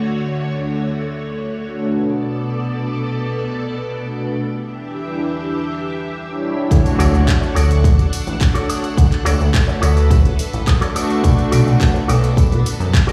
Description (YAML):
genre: nu-disco, nu disco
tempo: 106 BPM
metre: 4/4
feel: straight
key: D major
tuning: A4 = 440 Hz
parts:
  - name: string machine, full ensemble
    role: sustained chords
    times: 0.0-13.1 s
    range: B2 to C#6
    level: -26 LUFS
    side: equal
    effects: ensemble chorus, sidechain pumping
  - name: warm analog pad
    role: accompaniment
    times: 0.5-13.1 s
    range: G3 to C#6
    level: -26 LUFS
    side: equal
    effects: chorus, dub echo
  - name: fat analog bass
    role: bass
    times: 6.7-12.9 s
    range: D1 to B2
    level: -17 LUFS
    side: equal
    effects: none
  - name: electronic kick drum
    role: drums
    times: 6.7-13.1 s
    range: none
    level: -17 LUFS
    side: equal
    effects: none
  - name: house drum kit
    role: drums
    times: 6.7-13.1 s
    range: handclaps, hi-hat, shaker, woodblock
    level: -28 LUFS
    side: equal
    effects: none
  - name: tambourine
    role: percussion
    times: 6.7-13.1 s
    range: none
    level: -38 LUFS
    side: equal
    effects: none
  - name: impact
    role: sound effects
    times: 6.7-9.0 s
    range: none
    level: -26 LUFS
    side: equal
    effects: none
  - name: electric guitar with an envelope filter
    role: riff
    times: 7.0-13.1 s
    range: F#4 to E5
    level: -27 LUFS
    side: equal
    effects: subtle chorus, dub echo
room: light reverb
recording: played on a big sound system in a bare room, large studio reverb, small room ambience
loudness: -18 LUFS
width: mono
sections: 0.0-6.7 A section; 6.7-13.1 B section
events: filter sweep on analog synth pad 0.0-6.7; drop 6.7-13.1; impact 6.7-9.0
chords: 0.0 Dmaj7; 1.9 Bm7; 4.5 Em7; 6.7 Dmaj7; 11.0 Bm7